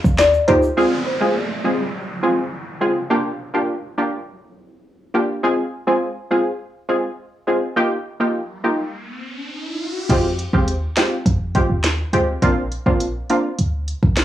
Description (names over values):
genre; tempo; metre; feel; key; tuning
dancehall; 103 BPM; 4/4; straight; F dorian; A4 = 440 Hz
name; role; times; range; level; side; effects
clean 808-style bass; bass; 0.0-0.7, 10.1-14.2 s; Bb1 to F2; -22 LUFS; equal; none
afro-pop drum kit; drums; 0.0-0.6, 10.1-14.2 s; crash cymbal, finger snaps, hi-hat, kick drum, rim click, snare drum; -20 LUFS; equal; none
egg shaker and timbales; percussion; 0.0-0.8 s; none; -31 LUFS; right 5 dB; none
soft round pluck; melody; 0.2-0.6 s; C5 to D5; -19 LUFS; left 2 dB; chorus, tape echo
punchy chord stab; accompaniment; 0.5-13.5 s; Ab3 to Ab4; -18 LUFS; equal; chorus
downlifter and riser; sound effects; 0.8-10.1 s; none; -29 LUFS; equal; none
room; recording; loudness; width
light reverb; dry, gritty hardware recording, cassette tape, small room ambience; -17 LUFS; side -12 dB against mid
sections
0.8-10.1 A section; 10.1-14.2 B section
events
riser 8.6-10.1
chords
0.0 Ebadd9; 0.8 Fm; 3.1 Gm7; 5.4 Fm; 7.8 Ebadd9; 10.1 Fmadd9; 12.4 Bbadd9